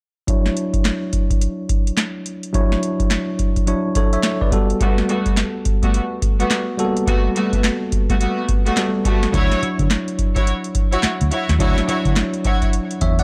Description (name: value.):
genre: R&B, new jack swing.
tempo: 106 BPM.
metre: 4/4.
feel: swing 62% on 16ths.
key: D major.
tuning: A4 = 439 Hz.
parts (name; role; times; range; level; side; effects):
bell-like tine electric piano; accompaniment; 0.3-13.2 s; F#3 to F#5; -25 LUFS; equal; low-pass filter.
booming analog drum machine; drums; 0.3-13.2 s; handclaps, hi-hat, kick drum, snare drum; -21 LUFS; equal; none.
rich studio string section; stabs; 4.8-12.6 s; G3 to C#5; -26 LUFS; equal; low-pass filter.
vintage muted fingered electric bass; bass; 9.3-13.2 s; D2 to D3; -22 LUFS; equal; none.
room: little or no reverb.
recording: none.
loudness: -19 LUFS.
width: mono.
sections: 0.3-9.3 A section; 9.3-13.2 B section.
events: filter sweep 0.3-9.3.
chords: 0.3 Dmaj9; 4.5 Gmaj9; 9.3 Dmaj9.